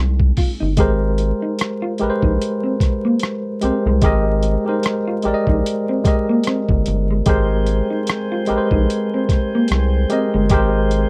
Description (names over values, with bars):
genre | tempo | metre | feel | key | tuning
R&B, neo-soul | 74 BPM | 4/4 | swing 56% on 16ths | Ab major | A4 = 441 Hz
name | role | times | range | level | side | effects
tine electric piano | accompaniment | 0.0-11.1 s | Ab3 to Ab5 | -22 LUFS | equal | overdrive
rubbery square bass | bass | 0.0-11.1 s | G1 to C2 | -21 LUFS | equal | none
boom bap sampler-style drum kit | drums | 0.2-11.1 s | hi-hat, kick drum, rim click | -21 LUFS | equal | none
electric guitar through a small old amp | second line | 0.4-10.9 s | Ab3 to Ab4 | -24 LUFS | equal | none
tonewheel organ | sustained chords | 7.3-11.1 s | Ab3 to G4 | -31 LUFS | equal | slow rotary speaker
room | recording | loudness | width
little or no reverb | dry, close 1970s-style studio recording, vinyl crackle | -18 LUFS | mono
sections
0.8-11.1 A section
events
none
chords
0.0 Abmaj9